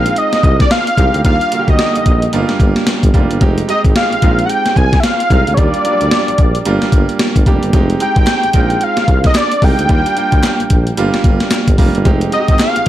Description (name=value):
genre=R&B, new jack swing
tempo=111 BPM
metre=4/4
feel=swing 60% on 16ths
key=Eb major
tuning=A4 = 440 Hz
part: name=wide unison lead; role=melody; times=0.0-12.9 s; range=Db5 to Ab5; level=-16 LUFS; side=equal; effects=none
part: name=bright grand piano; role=accompaniment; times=0.0-12.9 s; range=D3 to G4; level=-18 LUFS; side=right 4 dB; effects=none
part: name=mellow tuba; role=bass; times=0.0-12.8 s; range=F1 to Eb2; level=-17 LUFS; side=equal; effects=none
part: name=gated 80s digital drum machine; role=drums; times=0.1-12.9 s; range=hi-hat, kick drum, snare drum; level=-13 LUFS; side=equal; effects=gated reverb, gated reverb snare
part: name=group handclap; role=percussion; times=8.3-12.7 s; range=none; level=-27 LUFS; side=left 5 dB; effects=none
room=small room ambience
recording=dark, warm production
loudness=-10 LUFS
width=side -13 dB against mid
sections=0.0-12.9 A section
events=none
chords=0.0 Bb9sus4 (rootless); 1.2 Ebmaj9; 2.3 Gm7; 3.4 Fm9; 4.2 Bb9sus4; 5.6 Ebmaj9 (rootless); 6.7 Gm7; 7.7 Fm9; 8.5 Bb9sus4; 9.9 Ebmaj9 (rootless); 11.0 Gm7; 12.1 Fm9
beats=0.17 0.71 | 1.25 1.79 2.33 2.87 | 3.41 3.95 4.49 5.03 | 5.57 6.11 6.65 7.19 | 7.73 8.27 8.81 9.36 | 9.89 10.44 10.98 11.52 | 12.06 12.60